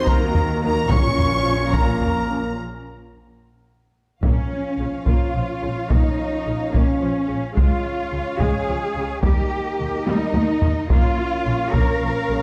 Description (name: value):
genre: cinematic, epic orchestral film score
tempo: 72 BPM (dotted quarters)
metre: 6/8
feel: straight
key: Bb dorian from 4.2 s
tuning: A4 = 441 Hz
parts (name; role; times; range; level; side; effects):
- warm symphonic violin section; melody; 0.0-12.4 s; Eb5 to Db6; -35 LUFS; equal; none
- warm symphonic violin section; second line; 0.0-12.4 s; Bb4 to Db6; -34 LUFS; equal; none
- warm symphonic viola section; accompaniment; 0.0-12.4 s; Db3 to Gb4; -33 LUFS; equal; none
- warm French horn section; sustained chords; 0.0-12.4 s; F3 to Eb4; -32 LUFS; equal; none
- dark trumpet section; stabs; 0.0-2.6 s; Bb4 to Db5; -28 LUFS; equal; none
- warm chamber double bass section; bass; 0.0-12.4 s; Bb1 to Eb2; -29 LUFS; equal; none
- warm studio cello section; bass; 0.0-12.4 s; Bb2 to Bb4; -28 LUFS; equal; none
- taiko ensemble; drums; 0.1-12.3 s; none; -23 LUFS; equal; none
- bright trombone section; sustained chords; 0.6-2.4 s; F3 to Eb4; -36 LUFS; equal; none
- timpani; percussion; 0.9-1.7 s; Bb2; -30 LUFS; equal; none
room: moderate scoring stage reverb, RT60 1.8 s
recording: none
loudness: -21 LUFS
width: mono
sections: 0.0-4.2 A section; 4.2-12.4 B section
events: break 2.6-4.2; drum fill 3.4-4.2, 10.1-10.9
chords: 0.0 Ebm; 0.9 Bbm; 7.6 Db; 9.2 Eb; 10.9 Bbm